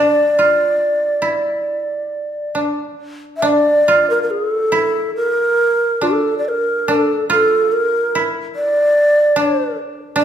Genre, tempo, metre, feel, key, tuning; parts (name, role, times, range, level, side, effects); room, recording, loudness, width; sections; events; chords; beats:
japanese traditional, Japanese chamber music; 66-75 BPM; 4/4; rubato; D hirajoshi; A4 = 440 Hz
breathy long shakuhachi; melody; 0.0-10.2 s; A4 to E5; -15 LUFS; equal
koto; second line; 0.0-10.2 s; D4 to F4; -20 LUFS; right 2 dB
wet recital hall reverb, RT60 1.6 s; recorded in a church or concert hall; -14 LUFS; side -9 dB against mid
0.0-3.4 A section; 3.4-10.2 B section
0.80 1.66 2.55 | 3.44 4.31 5.17 6.03 | 6.88 7.73 8.56 9.37 | 10.20